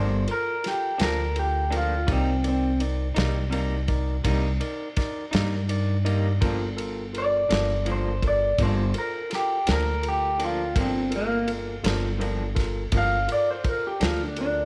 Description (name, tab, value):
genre	slow blues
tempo	55 BPM (dotted quarters)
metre	12/8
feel	straight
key	G minor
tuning	A4 = 439 Hz
part	electric guitar through a small old amp	melody	0.0-14.7 s	Bb3 to F5	-28 LUFS	equal	none
part	electric guitar through a small old amp	accompaniment	0.0-14.2 s	G2 to Eb4	-36 LUFS	equal	tremolo
part	overdriven tine electric piano	accompaniment	0.0-14.6 s	Eb4 to D5	-37 LUFS	equal	none
part	upright bass	bass	0.0-14.7 s	G1 to G2	-29 LUFS	equal	none
part	warm soul drum kit	drums	0.3-14.5 s	kick drum, ride cymbal, snare drum	-33 LUFS	equal	none
room	light reverb, small room ambience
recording	none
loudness	-25 LUFS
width	mono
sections	0.0-14.7 A section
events	clean electric guitar solo 0.0-14.7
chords	0.0 Gm7; 2.1 Cm7; 6.4 Gm7